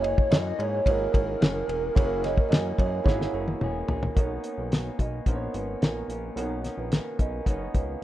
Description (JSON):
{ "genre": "indie pop, bedroom pop", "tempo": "109 BPM", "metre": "4/4", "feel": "straight", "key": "B major", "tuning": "A4 = 437 Hz", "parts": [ { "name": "warbly nostalgic lead", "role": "melody", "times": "0.0-3.6 s", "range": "A#4 to D#5", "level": "-30 LUFS", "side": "right 1 dB", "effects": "lush chorus, plate reverb" }, { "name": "kalimba", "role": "second line", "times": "0.0-7.9 s", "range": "A#4 to D#5", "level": "-33 LUFS", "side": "right 6 dB", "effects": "wide subtle chorus, analog delay, plate reverb" }, { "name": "electric guitar through a small old amp", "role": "accompaniment", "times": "0.0-8.0 s", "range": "F#2 to G#4", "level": "-37 LUFS", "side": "left 4 dB", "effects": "wide subtle chorus, warbly pitch drift, plate reverb" }, { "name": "warm upright piano", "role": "accompaniment", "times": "0.0-8.0 s", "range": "A#3 to C#5", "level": "-36 LUFS", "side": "right 2 dB", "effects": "plate reverb" }, { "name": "fat analog bass", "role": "bass", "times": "0.0-8.0 s", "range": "E1 to G#2", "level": "-33 LUFS", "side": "equal", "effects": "none" }, { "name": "cloth-damped thuddy drum kit", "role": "drums", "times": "0.0-7.9 s", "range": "hi-hat, kick drum, ride cymbal, snare drum, toms", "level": "-24 LUFS", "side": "equal", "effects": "vintage 12-bit sampler grit" } ], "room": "light reverb", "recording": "rough home demo mix", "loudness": "-24 LUFS", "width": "side -14 dB against mid", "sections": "0.0-4.2 A section; 4.2-8.0 B section", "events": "drum fill 3.1-4.2", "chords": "0.0 F#9; 4.2 Bmaj9" }